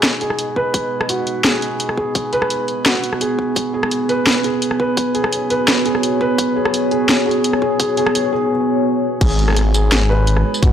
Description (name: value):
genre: half-time drum and bass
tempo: 170 BPM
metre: 4/4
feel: half-time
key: G# minor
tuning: A4 = 441 Hz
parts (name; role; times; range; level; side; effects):
- deep dark ambient pad; sustained chords; 0.0-10.7 s; G#3 to D#5; -21 LUFS; right 1 dB; chorus, built-in reverb, vintage 12-bit sampler grit, sidechain pumping
- felt-muted upright piano; arpeggios; 0.0-10.7 s; F#4 to B4; -20 LUFS; equal; low-pass filter, analog delay
- drum and bass drum kit; drums; 0.0-10.7 s; crash cymbal, hi-hat, rim click, snare drum, tambourine; -18 LUFS; equal; studio reverb
- electronic kick drum; drums; 0.6-10.7 s; none; -17 LUFS; equal; high-pass filter on kick, studio reverb
- phased detuned saw bass; bass; 9.2-10.7 s; G#1; -15 LUFS; left 1 dB; phaser
room: moderate echo chamber reverb, RT60 1.8 s, digital ambience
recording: dry, gritty hardware recording, transformer saturation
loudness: -15 LUFS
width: side -9 dB against mid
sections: 0.0-9.2 A section; 9.2-10.7 B section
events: build-up 0.0-9.2; filter sweep on ambient pad 0.0-9.2; drop 9.2-10.7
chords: 0.0 G#m